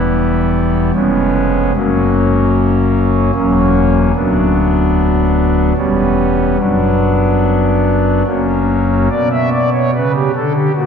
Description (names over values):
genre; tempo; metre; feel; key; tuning
classical, chorale-style piece for pipe organ; 74 BPM; 3/4; straight; B minor; A4 = 440 Hz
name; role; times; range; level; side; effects
pipe organ, foundations; solo; 0.0-10.9 s; D1 to E5; -11 LUFS; equal; none
room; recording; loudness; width
wet church reverb, RT60 3.4 s; dark, warm production, nothing above 10.4 kHz; -11 LUFS; side -7 dB against mid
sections
0.0-9.1 A section; 9.1-10.9 B section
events
none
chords
0.0 Em; 0.9 C#7/E#; 1.7 F#; 3.3 F#7/E; 4.1 Bm/D; 5.8 C#m7b5/E; 6.6 Bm/F#; 8.3 F#; 9.1 Bm